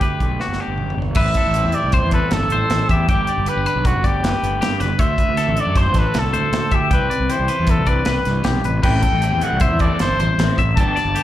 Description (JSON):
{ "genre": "math rock and midwest emo", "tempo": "156 BPM", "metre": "5/4", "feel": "straight", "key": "unclear", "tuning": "A4 = 440 Hz", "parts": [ { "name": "warm trumpet", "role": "melody", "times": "0.0-11.2 s", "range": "F#4 to A5", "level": "-22 LUFS", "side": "equal", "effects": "slapback echo, plate reverb" }, { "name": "twelve-string electric guitar", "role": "accompaniment", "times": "0.0-11.2 s", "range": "D2 to G4", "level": "-27 LUFS", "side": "right 8 dB", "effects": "slapback echo" }, { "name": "twangy electric guitar", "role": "arpeggios", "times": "0.0-11.2 s", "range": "F#4 to G5", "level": "-25 LUFS", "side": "left 6 dB", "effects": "slapback echo, plate reverb" }, { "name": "fuzz fingered electric bass", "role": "bass", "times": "0.0-11.1 s", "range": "G1 to G2", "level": "-20 LUFS", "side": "left 1 dB", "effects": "overdrive" }, { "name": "modern studio drum kit", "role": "drums", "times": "0.0-11.2 s", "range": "crash cymbal, hi-hat, kick drum, snare drum, toms", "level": "-21 LUFS", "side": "equal", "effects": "none" }, { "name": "crunchy overdriven guitar", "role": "riff", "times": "8.8-11.2 s", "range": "D3 to E4", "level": "-27 LUFS", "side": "left 1 dB", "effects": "phaser, slapback echo" } ], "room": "little or no reverb", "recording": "live gig heard through the venue's PA, club reverb", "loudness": "-16 LUFS", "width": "side -13 dB against mid", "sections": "0.0-1.2 A section; 1.2-11.2 B section", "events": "drum fill 0.4-1.2", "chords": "0.0 Gmaj7; 1.2 Am7; 3.1 G; 5.0 D7; 6.9 Cmaj7; 8.8 Am7" }